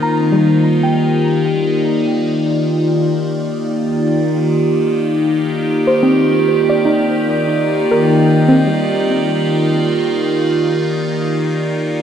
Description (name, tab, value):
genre	ambient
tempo	free time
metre	none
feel	none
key	Eb major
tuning	A4 = 440 Hz
part	evolving wavetable pad	sustained chords	0.0-12.0 s	Eb3 to D5	-15 LUFS	equal	phaser, built-in reverb, shimmer reverb
part	soft round pluck	arpeggios	0.0-11.9 s	G3 to Bb5	-18 LUFS	equal	chorus, tape echo, shimmer reverb
part	analog drone	drone	0.0-12.0 s	Eb3 to Bb3	-19 LUFS	equal	chorus
room	wet lush hall reverb, RT60 2.9 s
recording	dark, warm production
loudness	-13 LUFS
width	side -8 dB against mid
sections	0.0-12.0 A section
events	none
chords	0.0 Ebmaj13